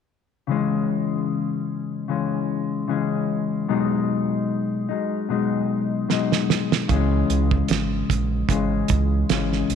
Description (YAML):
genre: indie pop, bedroom pop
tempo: 75 BPM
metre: 4/4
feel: swing 55% on 16ths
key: C# minor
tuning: A4 = 440 Hz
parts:
  - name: mellow electric guitar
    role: accompaniment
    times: 0.5-9.8 s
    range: B2 to D#4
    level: -22 LUFS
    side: left 5 dB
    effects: lush chorus, warbly pitch drift
  - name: cloth-damped thuddy drum kit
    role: drums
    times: 6.1-9.8 s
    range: hi-hat, kick drum, snare drum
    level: -23 LUFS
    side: right 7 dB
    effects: none
  - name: fingered electric bass with an envelope filter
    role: bass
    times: 6.9-9.8 s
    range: G#1 to C#2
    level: -23 LUFS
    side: right 2 dB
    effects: none
room: moderate echo chamber reverb, RT60 2.5 s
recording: 1960s-style stereo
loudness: -20 LUFS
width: side -7 dB against mid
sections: 0.5-9.8 A section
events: drum fill 6.1-6.9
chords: 0.5 C#m; 3.7 B6; 6.9 C#m